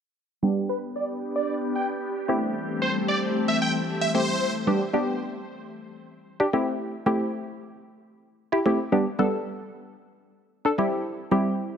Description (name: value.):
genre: pop.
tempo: 113 BPM.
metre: 4/4.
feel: straight.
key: G major.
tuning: A4 = 440 Hz.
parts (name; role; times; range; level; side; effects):
wavetable chord stab; accompaniment; 0.4-11.8 s; G3 to A4; -24 LUFS; equal; low-pass filter.
glassy FM pad; sustained chords; 0.7-4.7 s; E3 to G4; -28 LUFS; left 2 dB; ensemble chorus, built-in reverb, low-pass filter.
supersaw chords; melody; 0.7-4.5 s; B4 to G5; -28 LUFS; equal; phaser, low-pass filter, dub echo.
room: moderate lush hall reverb, RT60 2.1 s.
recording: none.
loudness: -23 LUFS.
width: side -7 dB against mid.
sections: 0.4-4.7 A section; 4.7-11.8 B section.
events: filter sweep 0.4-4.7.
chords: 0.4 G; 2.3 Am7; 4.7 G; 6.5 Am7; 8.9 G; 10.8 C.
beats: | 0.43 0.96 1.49 2.02 | 2.55 3.08 3.62 4.15 | 4.68 5.21 5.74 6.27 | 6.80 7.33 7.86 8.39 | 8.93 9.46 9.99 10.52 | 11.05 11.58.